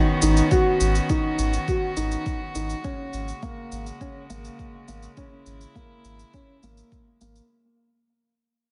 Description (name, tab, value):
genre	piano and strings electronica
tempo	103 BPM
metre	4/4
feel	straight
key	unclear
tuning	A4 = 441 Hz
part	warm string quartet	sustained chords	0.0-7.5 s	C#3 to F#4	-32 LUFS	equal	sidechain pumping
part	dark upright piano	riff	0.0-7.4 s	A#3 to F#4	-29 LUFS	equal	delay
part	warm sub bass	bass	0.2-7.4 s	G#1	-28 LUFS	equal	sidechain pumping
part	shaker	drums	0.2-7.5 s	none	-36 LUFS	equal	none
part	electronic kick drum	drums	0.5-7.0 s	none	-28 LUFS	equal	none
room	light reverb, small room ambience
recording	nothing above 10.5 kHz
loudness	-23 LUFS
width	mono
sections	0.0-7.5 A section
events	fade-out 0.0-7.5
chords	0.0 Badd9/G#; 2.8 F#add9/G#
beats	| 0.51 1.09 1.68 2.26 | 2.84 3.42 4.01 4.59 | 5.17 5.75 6.34 6.92